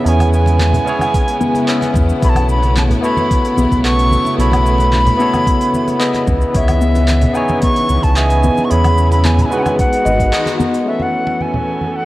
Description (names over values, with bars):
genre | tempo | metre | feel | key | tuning
sunset chillout | 111 BPM | 4/4 | straight | unclear | A4 = 439 Hz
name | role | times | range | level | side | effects
bright reedy wooden flute | melody | 0.0-12.1 s | E5 to C#6 | -19 LUFS | equal | tape echo
barky tine electric piano | accompaniment | 0.0-12.1 s | G#3 to E5 | -19 LUFS | moving between left 4 dB and right 4 dB | auto-pan, vintage 12-bit sampler grit
rich studio string section | sustained chords | 0.0-12.1 s | C#3 to A4 | -23 LUFS | right 1 dB | none
kalimba | arpeggios | 0.0-10.8 s | B3 to D#5 | -21 LUFS | left 2 dB | tape echo
round analog bass | bass | 0.1-10.3 s | G#1 to E2 | -14 LUFS | equal | transformer saturation
deep house drum kit | drums | 0.1-12.1 s | handclaps, hi-hat, shaker, woodblock | -25 LUFS | equal | low-pass filter on hats, low-pass filter on perc, low-pass filter on snare
congas | percussion | 0.2-11.9 s | none | -24 LUFS | right 1 dB | none
electronic kick drum | drums | 1.1-10.3 s | none | -17 LUFS | equal | none
room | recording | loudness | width
light reverb, small room ambience | worn, warbling old tape, cassette tape, warbly pitch drift | -12 LUFS | side -17 dB against mid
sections
0.0-10.9 A section; 10.9-12.1 B section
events
break 10.3-10.9; band accent 10.3; filter sweep on drum 10.9-12.1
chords
0.1 E6; 2.2 B9sus4; 6.3 C#m9; 8.7 E6; 9.8 G#m7; 10.9 B9sus4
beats
| 0.06 0.60 1.14 1.68 | 2.22 2.76 3.30 3.84 | 4.38 4.92 5.47 6.01 | 6.55 7.09 7.63 8.17 | 8.71 9.25 9.79 10.33 | 10.87 11.41 11.95